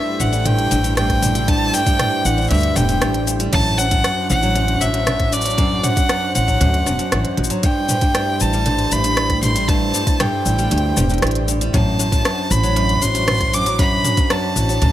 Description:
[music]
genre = folktronica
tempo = 117 BPM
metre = 4/4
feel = straight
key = A dorian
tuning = A4 = 440 Hz
[part]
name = clear violin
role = melody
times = 0.0-14.9 s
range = D5 to D6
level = -21 LUFS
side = equal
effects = tape echo
[part]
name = warbly tape-like pad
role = sustained chords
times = 0.0-14.9 s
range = A3 to C5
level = -26 LUFS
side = right 1 dB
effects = chorus, built-in reverb
[part]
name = picked steel-string acoustic guitar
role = arpeggios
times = 0.0-14.9 s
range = F#2 to G3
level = -23 LUFS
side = equal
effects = none
[part]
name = upright bass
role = bass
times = 0.2-14.9 s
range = E1 to D2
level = -20 LUFS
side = equal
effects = none
[part]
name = organic electronic drum kit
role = drums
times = 0.2-14.9 s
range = cabasa, hi-hat, rim click, toms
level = -22 LUFS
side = equal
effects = studio ambience
[part]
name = electronic kick drum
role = drums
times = 1.1-14.3 s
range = none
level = -19 LUFS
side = equal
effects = studio ambience
[sound]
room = light reverb, small room ambience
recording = none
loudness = -15 LUFS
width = side -13 dB against mid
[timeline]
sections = 0.0-14.9 A section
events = none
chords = 0.0 Am7; 3.5 D7/A; 7.6 Am7; 11.7 D7/A

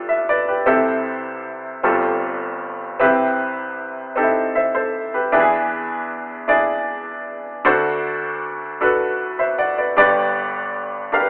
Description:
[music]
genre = gospel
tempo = 52 BPM (dotted quarters)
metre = 6/8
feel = straight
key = C major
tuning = A4 = 440 Hz
[part]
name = clear baby grand piano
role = solo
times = 0.0-11.3 s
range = G1 to F#5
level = -20 LUFS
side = equal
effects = none
[sound]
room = moderate studio reverb, RT60 0.6 s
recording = band playing live in one room, telephone sound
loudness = -20 LUFS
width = mono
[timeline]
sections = 0.0-11.3 A section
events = none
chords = 0.0 G7; 0.7 C6; 1.8 G9sus4; 3.0 Cmaj7; 5.3 E7; 7.7 D7; 10.0 G

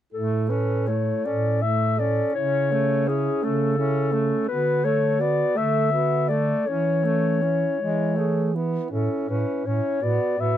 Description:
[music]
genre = classical, lyrical piece for single-reed quartet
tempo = 54 BPM (dotted quarters)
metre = 6/8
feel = rubato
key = A major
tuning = A4 = 440 Hz
[part]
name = mellow clarinet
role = melody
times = 0.1-10.6 s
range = G#4 to E5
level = -24 LUFS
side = left 5 dB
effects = none
[part]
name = clear alto saxophone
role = second line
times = 0.1-10.6 s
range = C#4 to A4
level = -30 LUFS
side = right 8 dB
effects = none
[part]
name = warm tenor saxophone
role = accompaniment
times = 0.1-10.6 s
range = G#3 to C#4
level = -27 LUFS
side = right 1 dB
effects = none
[part]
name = dark bass clarinet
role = bass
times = 0.1-10.6 s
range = A2 to E3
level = -26 LUFS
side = right 2 dB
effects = none
[sound]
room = light reverb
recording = none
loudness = -20 LUFS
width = side -11 dB against mid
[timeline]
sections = 0.1-10.6 A section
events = none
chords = 0.1 A; 2.4 A/C#; 4.5 Bm7/D; 6.7 A/E; 7.8 E; 8.9 A; 10.0 B5/A

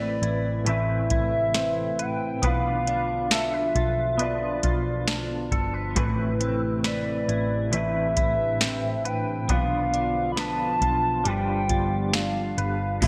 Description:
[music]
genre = dream pop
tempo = 68 BPM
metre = 4/4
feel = straight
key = A minor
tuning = A4 = 442 Hz
[part]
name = warbly nostalgic lead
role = melody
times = 0.0-13.1 s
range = B4 to B5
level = -30 LUFS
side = equal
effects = chorus, digital delay
[part]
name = clean electric guitar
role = accompaniment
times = 0.0-13.1 s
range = A2 to B4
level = -35 LUFS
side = equal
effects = tremolo, ensemble chorus
[part]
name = warbly tape-like pad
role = sustained chords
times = 0.0-13.1 s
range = B2 to B4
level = -35 LUFS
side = equal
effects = chorus, built-in reverb
[part]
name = clean electric guitar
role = arpeggios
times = 0.0-13.1 s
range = A2 to B4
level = -33 LUFS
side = equal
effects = analog chorus, digital delay
[part]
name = vintage muted picked electric bass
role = bass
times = 0.0-13.1 s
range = G1 to B1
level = -32 LUFS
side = equal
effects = none
[part]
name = soft vintage rhythm box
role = drums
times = 0.2-13.1 s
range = crash cymbal, hi-hat, kick drum, ride cymbal, snare drum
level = -29 LUFS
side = equal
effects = gated reverb
[sound]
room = wet lush hall reverb, RT60 2.1 s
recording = bright 1980s-style digital production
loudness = -25 LUFS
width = mono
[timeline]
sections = 0.0-13.0 A section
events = none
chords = 0.0 Amadd9; 2.4 Bdim; 6.0 Amadd9; 9.5 Bdim; 11.3 G7

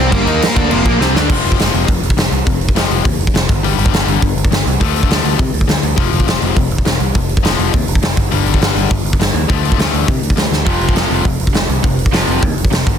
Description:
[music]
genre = punk rock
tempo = 205 BPM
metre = 4/4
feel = straight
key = unclear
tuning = A4 = 440 Hz
[part]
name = dark smooth lead guitar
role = melody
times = 0.0-1.0 s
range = Bb3 to C5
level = -20 LUFS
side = equal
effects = overdrive, tape echo
[part]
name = biting overdriven guitar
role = riff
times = 0.0-1.3 s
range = F2 to Eb4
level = -21 LUFS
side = equal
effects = none
[part]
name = cranked stack guitar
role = riff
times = 0.0-1.3, 10.7-12.8 s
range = F2 to Eb4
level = -21 LUFS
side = right 13 dB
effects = overdrive
[part]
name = distorted electric guitar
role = riff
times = 0.0-12.8 s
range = F2 to Eb4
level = -19 LUFS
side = left 16 dB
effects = overdrive
[part]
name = overdriven picked electric bass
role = bass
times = 0.0-13.0 s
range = F1 to C3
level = -18 LUFS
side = equal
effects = none
[part]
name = big rock drum kit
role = drums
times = 0.1-12.9 s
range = crash cymbal, hi-hat, kick drum, snare drum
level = -14 LUFS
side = equal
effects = none
[sound]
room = little or no reverb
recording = dense, heavily limited modern master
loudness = -12 LUFS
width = side -8 dB against mid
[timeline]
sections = 0.0-1.3 A section; 1.3-13.0 B section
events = drum fill 1.0, 10.5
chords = 0.1 Gm; 1.3 F5; 3.5 G5; 4.8 Dm; 6.0 F5; 8.2 G5; 9.5 Dm; 10.7 F5

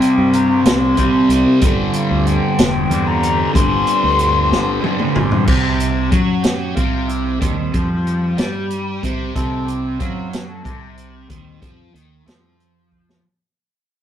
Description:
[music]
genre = psychedelic rock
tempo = 62 BPM (dotted quarters)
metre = 6/8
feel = straight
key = C major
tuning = A4 = 436 Hz
[part]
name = hollow concert flute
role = melody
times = 0.0-5.1 s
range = F5 to C6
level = -20 LUFS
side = left 4 dB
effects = none
[part]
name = combo organ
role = sustained chords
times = 0.0-12.6 s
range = E3 to C5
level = -27 LUFS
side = right 3 dB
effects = spring reverb
[part]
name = fuzz guitar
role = riff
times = 0.0-13.2 s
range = G2 to C4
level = -17 LUFS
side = equal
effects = distortion, phaser
[part]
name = vintage drum kit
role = drums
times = 0.0-13.2 s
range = crash cymbal, hi-hat, kick drum, snare drum, toms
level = -19 LUFS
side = equal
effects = none
[part]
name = fingered electric bass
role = bass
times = 0.2-13.2 s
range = E1 to C3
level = -22 LUFS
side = equal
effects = none
[sound]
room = moderate small room reverb, RT60 0.5 s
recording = rough rehearsal-room recording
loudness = -14 LUFS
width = side -10 dB against mid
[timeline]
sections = 0.0-5.5 A section; 5.5-13.2 B section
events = drum fill 4.5-5.5, 12.9-13.2; fade-out 5.5-13.2; transistor combo organ solo 5.5-13.2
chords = 0.0 Csus4; 1.6 Gsus4; 5.5 C

